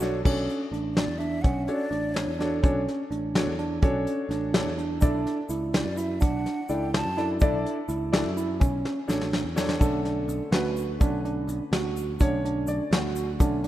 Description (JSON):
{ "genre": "progressive instrumental, band music in an uneven meter", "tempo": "251 BPM (eighths)", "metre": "5/8", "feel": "straight", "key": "B minor", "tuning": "A4 = 440 Hz", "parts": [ { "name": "clear grand piano", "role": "accompaniment", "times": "0.0-13.7 s", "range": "D3 to D5", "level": "-31 LUFS", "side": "left 2 dB", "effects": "none" }, { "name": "overdriven tine electric piano", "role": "arpeggios", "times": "0.0-13.7 s", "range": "C#4 to F#4", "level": "-30 LUFS", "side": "right 3 dB", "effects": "none" }, { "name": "picked electric bass", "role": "bass", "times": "0.0-13.7 s", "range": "A1 to F#2", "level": "-32 LUFS", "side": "equal", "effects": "none" }, { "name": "soft brush drum kit", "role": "drums", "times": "0.0-13.7 s", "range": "crash cymbal, hi-hat, kick drum, snare drum", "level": "-26 LUFS", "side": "equal", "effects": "none" }, { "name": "egg shaker", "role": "percussion", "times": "0.0-0.2, 5.0-13.6 s", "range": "none", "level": "-45 LUFS", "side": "left 4 dB", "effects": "none" }, { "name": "breathy mellow jazz flute", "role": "melody", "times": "1.0-2.5, 5.7-7.3 s", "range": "C#5 to A5", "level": "-35 LUFS", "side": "equal", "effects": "none" } ], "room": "moderate lush hall reverb, RT60 2.7 s", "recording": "rough home demo mix", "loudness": "-24 LUFS", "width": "side -14 dB against mid", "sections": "0.2-9.8 A section; 9.8-13.7 B section", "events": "drum fill 8.9-9.8; grand piano solo 9.8-13.7", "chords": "0.0 Bm9; 5.0 Dsus2/B; 8.6 Bm9", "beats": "0.01 | 0.25 0.49 0.73 0.96 1.20 | 1.44 1.68 1.92 2.16 2.40 | 2.64 2.88 3.12 3.35 3.59 | 3.83 4.07 4.31 4.55 4.79 | 5.03 5.27 5.51 5.75 5.98 | 6.22 6.46 6.70 6.94 7.18 | 7.42 7.66 7.90 8.14 8.38 | 8.62 8.85 9.09 9.33 9.57 | 9.81 10.05 10.29 10.53 10.77 | 11.01 11.25 11.48 11.72 11.96 | 12.20 12.44 12.68 12.92 13.16 | 13.40 13.64" }